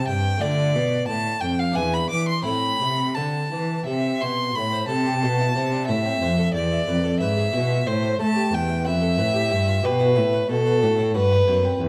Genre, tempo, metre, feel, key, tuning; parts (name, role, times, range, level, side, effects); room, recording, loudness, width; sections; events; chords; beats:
classical, baroque-style sonata movement with continuo; 91 BPM; 3/4; rubato; A minor; A4 = 441 Hz
rich violin; melody; 0.0-11.8 s; A4 to D6; -26 LUFS; equal
harpsichord; accompaniment; 0.0-11.9 s; E2 to E5; -30 LUFS; equal
warm cello; bass; 0.0-11.9 s; E2 to A3; -26 LUFS; equal
moderate recital hall reverb, RT60 1.6 s; close, detailed microphones; -22 LUFS; mono
0.0-4.6 A section; 4.6-11.9 B section
0.4 Dm; 1.8 E5; 2.5 Am; 6.6 E7; 7.9 Am; 8.5 Em; 10.5 B7
| 0.42 1.08 1.76 | 2.46 3.16 3.87 | 4.56 5.23 5.89 | 6.55 7.21 7.87 | 8.53 9.18 9.84 | 10.50 11.15 11.80